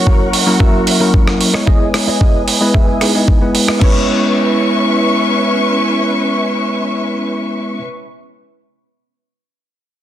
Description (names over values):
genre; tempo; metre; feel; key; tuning
nu-disco, nu disco; 112 BPM; 4/4; straight; C# dorian; A4 = 439 Hz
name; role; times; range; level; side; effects
bell-like tine electric piano; accompaniment; 0.0-7.8 s; F#3 to D#5; -16 LUFS; equal; sidechain pumping, low-pass filter, ping-pong delay
dark symphonic string section; sustained chords; 0.0-7.8 s; C#4 to D#6; -19 LUFS; left 1 dB; sidechain pumping, low-pass filter
direct-recorded clean electric guitar; riff; 0.0-7.8 s; E4 to E5; -22 LUFS; right 3 dB; ensemble chorus, vintage 12-bit sampler grit, low-pass filter, ping-pong delay
electronic kick drum; drums; 0.1-3.9 s; none; -12 LUFS; equal; overdrive
dusty soul sampler-style drum kit; drums; 0.3-3.9 s; crash cymbal, hi-hat, rim click; -18 LUFS; right 3 dB; overdrive, soft clipping on snare
room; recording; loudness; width
light reverb; dense, heavily limited modern master; -11 LUFS; side -12 dB against mid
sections
0.0-3.8 A section; 3.8-8.1 B section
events
filter sweep on string section 0.0-3.8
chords
0.0 F#7; 1.7 Emaj7; 3.8 C#m7